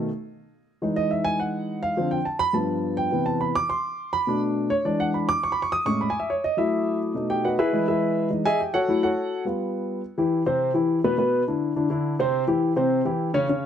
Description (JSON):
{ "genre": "jazz", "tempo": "208 BPM", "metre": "4/4", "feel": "straight", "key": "E major, C major from 10.0 s", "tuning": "A4 = 440 Hz", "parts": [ { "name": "warm upright piano", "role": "solo", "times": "0.0-13.7 s", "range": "G2 to D#6", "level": "-22 LUFS", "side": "equal", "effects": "none" } ], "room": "light reverb", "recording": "none", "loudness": "-22 LUFS", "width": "side -9 dB against mid", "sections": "0.8-10.0 A section; 10.0-13.7 B section", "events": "upright piano solo 0.0-10.0", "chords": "0.0 N.C.; 0.8 Emaj7; 2.0 Dm7; 2.5 G7; 3.1 Cmaj7; 4.3 Bm7; 4.8 E7; 5.4 Amaj7; 6.6 F#m7; 7.2 B7; 7.7 Emaj7; 8.9 F#m7; 9.5 G7; 10.0 Cmaj7; 11.2 E5; 12.3 C" }